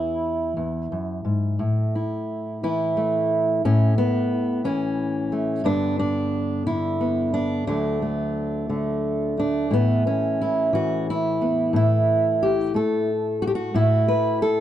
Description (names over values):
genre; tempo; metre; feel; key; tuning
folk, solo fingerstyle acoustic guitar; 59 BPM (dotted quarters); 6/8; straight; unclear; A4 = 437 Hz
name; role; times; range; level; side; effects
fingerpicked steel-string acoustic guitar; solo; 0.0-14.6 s; D2 to B4; -20 LUFS; equal; none
room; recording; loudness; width
light reverb; dark, warm production; -20 LUFS; side -11 dB against mid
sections
0.0-9.7 A section; 9.7-14.6 B section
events
none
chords
0.0 E; 1.6 Aadd9; 5.7 G; 7.7 D; 9.7 Aadd9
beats
0.57 | 1.60 2.62 | 3.64 4.65 | 5.65 6.66 | 7.67 8.69 | 9.70 10.72 | 11.74 12.74 | 13.75